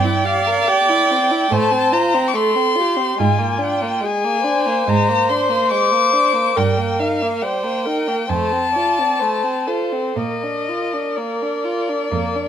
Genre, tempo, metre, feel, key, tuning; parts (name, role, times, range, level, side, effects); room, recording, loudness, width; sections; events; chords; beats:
classical, slow romantic movement for string quartet; 59-73 BPM; 4/4; rubato; Bb major; A4 = 435 Hz
warm violin; melody; 0.0-12.5 s; C5 to D6; -19 LUFS; left 4 dB
warm violin; second line; 0.0-12.5 s; G3 to Bb4; -23 LUFS; equal
warm viola; accompaniment; 0.0-12.5 s; F4 to D5; -21 LUFS; right 4 dB
rich cello; bass; 0.0-12.5 s; F2 to Bb2; -22 LUFS; right 5 dB
light reverb; -16 LUFS; side -9 dB against mid
0.0-12.5 A section
0.0 C/G (rootless); 1.5 F/A; 3.2 Bb7/Ab; 6.6 Eb/G; 8.3 F; 10.2 Bb
0.68 1.51 2.35 | 3.19 4.03 4.87 5.71 | 6.56 7.43 8.30 9.20 | 10.17 11.16 12.13